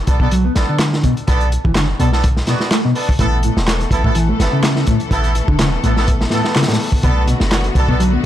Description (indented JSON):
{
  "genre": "breakbeat, breaks",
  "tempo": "125 BPM",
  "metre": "4/4",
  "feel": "swing 54% on 16ths",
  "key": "B minor",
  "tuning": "A4 = 442 Hz",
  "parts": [
    { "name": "bright horn section", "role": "stabs", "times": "0.1-8.0 s", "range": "B3 to A4", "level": "-23 LUFS", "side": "right 2 dB", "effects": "ping-pong delay" },
    { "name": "warm 808-style bass", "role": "bass", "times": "0.1-8.2 s", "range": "E1 to B1", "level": "-17 LUFS", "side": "equal", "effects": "none" },
    { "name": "crunchy breakbeat drum kit", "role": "drums", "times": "0.1-8.1 s", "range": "hi-hat, kick drum, snare drum", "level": "-18 LUFS", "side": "equal", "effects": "none" },
    { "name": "mellow electric guitar", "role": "riff", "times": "0.2-8.2 s", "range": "A2 to B3", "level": "-19 LUFS", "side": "left 1 dB", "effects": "overdrive, lush chorus" },
    { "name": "electronic handclaps", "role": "drums", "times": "0.8-7.6 s", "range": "none", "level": "-26 LUFS", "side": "right 1 dB", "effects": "none" },
    { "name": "clear symphonic string section", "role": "sustained chords", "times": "3.2-8.3 s", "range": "D3 to A4", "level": "-24 LUFS", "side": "left 3 dB", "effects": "vintage 12-bit sampler grit, sidechain pumping" }
  ],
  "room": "small room ambience",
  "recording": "dark, warm production",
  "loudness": "-13 LUFS",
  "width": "side -12 dB against mid",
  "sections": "0.0-8.3 A section",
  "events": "none",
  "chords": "0.0 Bm7; 3.2 Asus2; 7.0 Bm7"
}